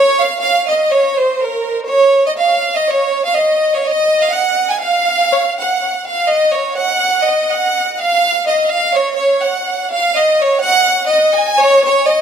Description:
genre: mexican folk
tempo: 124 BPM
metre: 2/4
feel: swing 54% on 8ths, rubato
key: unclear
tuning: A4 = 439 Hz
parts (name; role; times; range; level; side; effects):
- bright chamber violin section; solo; 0.0-12.2 s; Bb4 to Ab5; -12 LUFS; right 1 dB; tape echo
room: moderate recital hall reverb, RT60 1.3 s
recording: dark, warm production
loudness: -12 LUFS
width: side -8 dB against mid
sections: 0.0-5.8 A section; 5.8-12.2 B section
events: none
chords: none

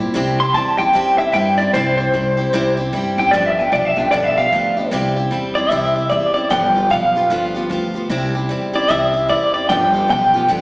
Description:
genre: rockabilly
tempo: 151 BPM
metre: 4/4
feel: swing 62% on 8ths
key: C major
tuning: A4 = 440 Hz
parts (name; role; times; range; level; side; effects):
- picked steel-string acoustic guitar; accompaniment; 0.0-10.6 s; G2 to G4; -20 LUFS; equal; slapback echo
- upright bass; bass; 0.0-10.6 s; G1 to Bb2; -24 LUFS; equal; none
- electric guitar through a small old amp; melody; 0.4-10.5 s; C5 to C6; -15 LUFS; equal; tremolo, slapback echo, analog delay
room: light reverb, small room ambience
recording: live gig heard through the venue's PA, recital hall reverb, small speaker sound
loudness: -14 LUFS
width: side -23 dB against mid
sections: 0.0-4.9 A section; 4.9-10.6 B section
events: none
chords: 0.0 C; 3.3 G7; 4.9 C; 6.5 G7; 8.1 C; 9.7 G7

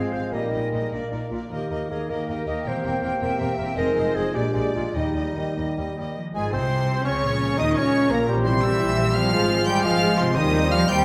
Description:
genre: classical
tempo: 97-117 BPM (dotted quarters)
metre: 6/8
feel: rubato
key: Eb major, F minor from 6.2 s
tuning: A4 = 440 Hz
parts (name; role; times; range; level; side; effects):
- clear chamber violin section; melody; 0.0-11.0 s; D5 to G6; -33 LUFS; equal; none
- bright small flute group; second line; 0.0-11.0 s; Ab4 to G5; -35 LUFS; equal; none
- rich symphonic violin section; second line; 0.0-11.0 s; Bb3 to G5; -36 LUFS; equal; none
- warm clarinet; second line; 0.0-11.0 s; Eb4 to Eb5; -31 LUFS; equal; none
- rich symphonic viola section; accompaniment; 0.0-11.0 s; Ab3 to Bb4; -33 LUFS; equal; none
- warm bassoon; accompaniment; 0.0-11.0 s; G3 to Eb4; -34 LUFS; equal; none
- warm French horn section; sustained chords; 0.0-11.0 s; G3 to G4; -34 LUFS; equal; none
- concert harp; arpeggios; 0.0-11.0 s; Ab2 to Bb5; -32 LUFS; equal; none
- rich studio double bass section; bass; 0.0-11.0 s; E1 to Eb2; -33 LUFS; equal; none
- rich symphonic cello section; bass; 0.0-11.0 s; Eb2 to G3; -31 LUFS; equal; none
- warm cor anglais; second line; 6.4-11.0 s; Ab4 to Eb5; -34 LUFS; equal; none
room: wet recital hall reverb, RT60 1.7 s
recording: none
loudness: -23 LUFS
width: mono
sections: 0.0-6.2 A section; 6.2-11.0 B section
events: none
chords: 0.3 Eb/Bb; 0.9 Bb; 1.5 Eb; 2.7 C7/E; 3.8 Fm7; 4.4 Bb7; 5.0 Eb; 6.2 Fm; 7.2 Bbm7/Db; 8.3 C7/Bb; 9.3 Fm/Ab; 10.4 Cm/Eb

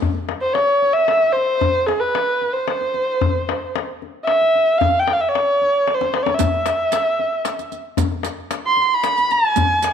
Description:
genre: Persian modal ensemble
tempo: 113 BPM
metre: 3/4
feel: straight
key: C dastgah chahargah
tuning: A4 = 438 Hz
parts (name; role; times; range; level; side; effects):
- tombak; percussion; 0.0-9.9 s; none; -23 LUFS; left 6 dB; none
- dark kamancheh; melody; 0.4-9.9 s; Ab4+43c to C6; -16 LUFS; right 1 dB; none
- riq; percussion; 6.4-9.9 s; none; -28 LUFS; right 11 dB; none
room: moderate echo chamber reverb, RT60 1.4 s, studio ambience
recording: 1960s-style stereo with parts hard left and right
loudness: -16 LUFS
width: side -8 dB against mid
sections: 0.0-9.9 A section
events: drum fill 5.9-6.4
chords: none

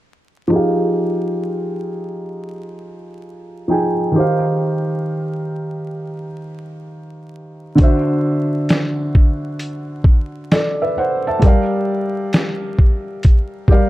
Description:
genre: lo-fi hip hop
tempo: 66 BPM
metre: 4/4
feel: swing 65% on 16ths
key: F dorian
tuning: A4 = 440 Hz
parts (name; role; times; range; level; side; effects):
- felt-muted upright piano; accompaniment; 0.5-13.9 s; D3 to A5; -19 LUFS; equal; low-pass filter
- lo-fi sampler-style drum kit; drums; 7.8-13.9 s; hi-hat, kick drum, snare drum; -13 LUFS; equal; none
room: light reverb, digital ambience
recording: dark, warm production, vinyl crackle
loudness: -15 LUFS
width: side -16 dB against mid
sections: 0.5-13.9 A section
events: filter sweep on felt piano 0.5-13.9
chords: 0.5 Fm9; 4.2 Eb6; 7.8 D7; 11.4 Gm7

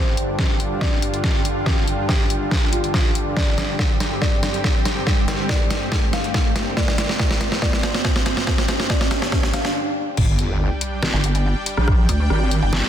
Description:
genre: heavy wobble dubstep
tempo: 141 BPM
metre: 4/4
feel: half-time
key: unclear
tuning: A4 = 440 Hz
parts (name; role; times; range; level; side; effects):
- felt-muted upright piano; melody; 0.0-9.7 s; F4 to F5; -31 LUFS; equal; ping-pong delay
- supersaw pad; sustained chords; 0.0-12.9 s; G2 to G5; -28 LUFS; equal; sidechain pumping, low-pass filter
- riser and sub drop; sound effects; 1.6-11.9 s; none; -29 LUFS; right 1 dB; none
- warbly tape-like pad; texture; 0.0-9.7 s; D4 to G5; -30 LUFS; equal; chorus, built-in reverb, sidechain pumping
- dubstep drum kit; drums; 0.2-12.8 s; crash cymbal, hi-hat, rim click, snare drum; -23 LUFS; equal; none
- electronic kick drum; drums; 0.4-12.0 s; none; -21 LUFS; equal; none
- wobble bass; bass; 10.2-12.6 s; G1 to Bb1; -19 LUFS; equal; chorus, overdrive
- pulsing pluck wobble bass; bass; 11.1-12.8 s; G1 to D2; -19 LUFS; equal; chorus, overdrive
room: light reverb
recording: dense, heavily limited modern master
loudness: -18 LUFS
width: side -10 dB against mid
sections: 0.0-10.2 A section; 10.2-12.9 B section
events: build-up 0.0-10.2; drum fill 0.0-9.7; filter sweep on supersaw synth 0.0-10.2; riser 1.6-9.7; stop 9.7-10.2; drop 10.2-12.9; impact 10.2-11.9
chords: 0.0 G5

